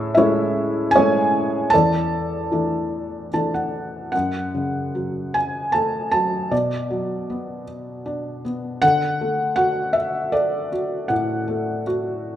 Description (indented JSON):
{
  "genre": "classical, lyrical solo piano",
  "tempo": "72-80 BPM",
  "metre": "3/4",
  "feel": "rubato",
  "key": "F# minor from 4.1 s",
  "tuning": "A4 = 441 Hz",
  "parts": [
    { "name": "felt-muted upright piano", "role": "solo", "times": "0.0-12.4 s", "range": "E2 to A5", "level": "-19 LUFS", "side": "equal", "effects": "none" }
  ],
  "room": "moderate recital hall reverb, RT60 1.4 s",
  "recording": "none",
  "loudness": "-19 LUFS",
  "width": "side -11 dB against mid",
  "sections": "0.0-4.1 A section; 4.1-12.4 B section",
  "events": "felt piano fill 2.9-4.1",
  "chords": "0.0 Amaj7; 1.7 E7sus4; 4.1 F#m; 6.5 Bm; 8.8 D"
}